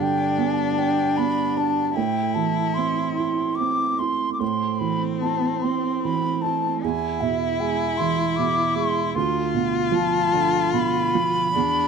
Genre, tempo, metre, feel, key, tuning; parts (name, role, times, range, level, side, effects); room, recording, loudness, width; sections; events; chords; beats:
celtic folk, Celtic slow air; 75 BPM; 3/4; uneven beats, rubato; A minor, A harmonic minor from 4.4 s; A4 = 440 Hz
baroque flute; melody; 0.0-11.9 s; E5 to D6; -24 LUFS; left 1 dB
warm cello; second line; 0.0-11.9 s; C4 to F4; -26 LUFS; left 6 dB
felt-muted upright piano; accompaniment; 0.0-11.9 s; D2 to E4; -24 LUFS; right 11 dB
small room ambience; dry, close 1970s-style studio recording; -20 LUFS; side -6 dB against mid
0.0-4.4 A section; 4.4-11.9 B section
0.0 G; 2.0 Am; 6.8 E; 9.2 Bdim/D
0.41 1.19 | 1.97 2.76 3.58 | 4.42 5.23 6.04 | 6.84 7.61 8.38 | 9.16 9.94 10.74 | 11.55